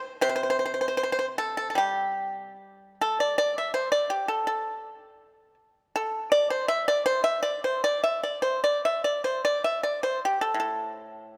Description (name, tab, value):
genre	chinese traditional, Chinese solo plucked strings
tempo	73-84 BPM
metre	2/4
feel	rubato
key	G zhi mode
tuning	A4 = 439 Hz
part	pipa	solo	0.2-11.4 s	A2 to E5	-27 LUFS	equal	none
room	moderate concert hall reverb, RT60 2.2 s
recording	none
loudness	-27 LUFS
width	mono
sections	0.0-3.4 A section; 3.4-11.4 B section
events	none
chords	none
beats	| 0.24 1.00 | 1.77 2.57 | 3.37 4.12 | 4.85 5.59 | 6.31 7.04 | 7.80 8.59 | 9.40 10.18 | 10.93